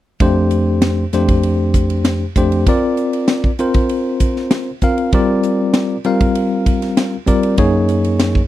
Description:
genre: electric jazz fusion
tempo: 98 BPM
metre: 4/4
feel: straight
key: F mixolydian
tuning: A4 = 440 Hz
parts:
  - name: bell-like tine electric piano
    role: accompaniment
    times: 0.2-8.4 s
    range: F2 to F5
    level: -15 LUFS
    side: left 1 dB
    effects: medium stereo tremolo
  - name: crisp fusion drum kit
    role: drums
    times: 0.2-8.5 s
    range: hi-hat, kick drum, ride cymbal, snare drum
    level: -17 LUFS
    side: equal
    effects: none
room: little or no reverb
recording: dry, close 1970s-style studio recording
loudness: -13 LUFS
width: side -14 dB against mid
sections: 0.2-8.5 A section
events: none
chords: 0.2 F; 2.7 C9sus4; 5.1 Gm7; 7.6 Gb

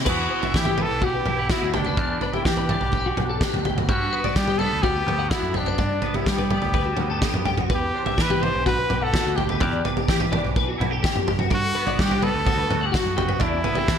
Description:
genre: math rock and midwest emo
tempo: 126 BPM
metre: 4/4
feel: straight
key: E minor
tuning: A4 = 440 Hz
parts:
  - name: twangy electric guitar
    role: accompaniment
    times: 0.0-14.0 s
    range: E2 to G4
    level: -31 LUFS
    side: right 6 dB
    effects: ensemble chorus
  - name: twelve-string electric guitar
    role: arpeggios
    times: 0.0-14.0 s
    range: F#4 to F#5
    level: -27 LUFS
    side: left 6 dB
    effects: ensemble chorus
  - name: growling picked electric bass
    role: bass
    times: 0.0-14.0 s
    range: B1 to G3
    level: -27 LUFS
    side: equal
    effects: overdrive
  - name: clear trumpet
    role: melody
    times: 0.1-14.0 s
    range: D4 to C5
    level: -26 LUFS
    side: equal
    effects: digital delay
  - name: loose indie drum kit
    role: drums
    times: 0.1-14.0 s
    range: crash cymbal, kick drum, snare drum, toms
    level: -24 LUFS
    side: right 1 dB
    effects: none
room: light reverb, studio reverb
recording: bright 1980s-style digital production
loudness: -20 LUFS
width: side -8 dB against mid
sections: 0.1-14.0 A section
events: none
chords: 0.1 Em9; 3.9 Gmaj7; 7.7 Em9; 11.5 Gmaj9; 13.4 Em11

